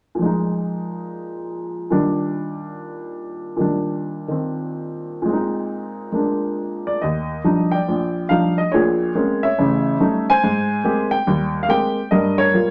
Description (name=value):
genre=solo jazz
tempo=142 BPM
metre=4/4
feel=swing 68% on 8ths, rubato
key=Eb major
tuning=A4 = 440 Hz
part: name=warm upright piano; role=solo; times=0.1-12.7 s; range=A1 to Ab5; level=-21 LUFS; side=equal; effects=none
room=wet studio reverb, RT60 0.6 s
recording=none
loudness=-20 LUFS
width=mono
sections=0.2-7.0 A section; 7.0-12.7 B section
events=none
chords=0.2 Bb7sus4; 1.9 Ebmaj7/Bb; 5.3 Bb9sus4; 7.0 Ebmaj9; 8.7 Bbm9; 9.6 A7#11; 10.4 Abmaj9; 12.1 Gm7b5